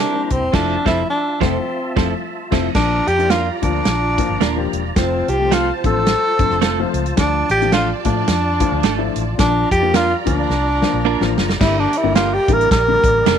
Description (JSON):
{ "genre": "uptempo 1960s-style soul", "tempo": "108 BPM", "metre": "4/4", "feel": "swing 58% on 8ths", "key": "unclear", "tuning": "A4 = 440 Hz", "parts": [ { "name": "warm tenor saxophone", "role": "melody", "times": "0.0-13.4 s", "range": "C4 to Bb4", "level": "-18 LUFS", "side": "equal", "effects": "none" }, { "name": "percussive tonewheel organ", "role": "sustained chords", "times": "0.0-13.4 s", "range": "E4 to Bb5", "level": "-29 LUFS", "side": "equal", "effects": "slow rotary speaker, overdrive, chorus vibrato" }, { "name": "direct-recorded clean electric guitar", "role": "stabs", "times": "0.0-13.4 s", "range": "F3 to Bb4", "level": "-22 LUFS", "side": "right 14 dB", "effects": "none" }, { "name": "vintage muted fingered electric bass", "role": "bass", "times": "0.0-13.4 s", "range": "Eb1 to A2", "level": "-22 LUFS", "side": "equal", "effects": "none" }, { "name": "warm baby grand piano", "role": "accompaniment", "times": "0.1-13.2 s", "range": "D3 to G4", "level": "-24 LUFS", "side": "left 13 dB", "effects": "none" }, { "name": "warm soul drum kit", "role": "drums", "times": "0.3-13.4 s", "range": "crash cymbal, hi-hat, kick drum, snare drum", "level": "-20 LUFS", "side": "right 1 dB", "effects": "none" }, { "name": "warm studio string section", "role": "second line", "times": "2.7-13.4 s", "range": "F4 to Bb5", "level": "-30 LUFS", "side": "right 12 dB", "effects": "none" } ], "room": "light reverb", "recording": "1960s-style stereo with parts hard left and right", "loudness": "-15 LUFS", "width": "side -8 dB against mid", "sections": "0.0-2.8 A section; 2.8-11.6 B section; 11.6-13.4 C section", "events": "band accent 0.5-2.8; drum fill 10.5-11.6", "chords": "0.0 C7; 0.5 Fmaj7; 2.8 Bb; 5.0 F; 7.2 Dm; 9.4 Bb; 11.6 Gm" }